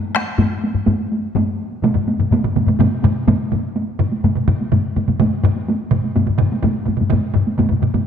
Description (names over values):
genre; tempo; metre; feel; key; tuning
japanese traditional, taiko drum ensemble; 125 BPM; 4/4; straight; none; none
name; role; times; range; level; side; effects
taiko ensemble; percussion; 0.0-8.1 s; none; -20 LUFS; right 2 dB; none
taiko ensemble; percussion; 0.1-8.1 s; none; -19 LUFS; left 4 dB; none
taiko ensemble; percussion; 1.8-8.1 s; none; -21 LUFS; right 6 dB; none
room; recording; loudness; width
wet scoring stage reverb, RT60 2.0 s; none; -15 LUFS; side -8 dB against mid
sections
0.0-3.8 A section; 3.8-8.1 B section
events
none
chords
none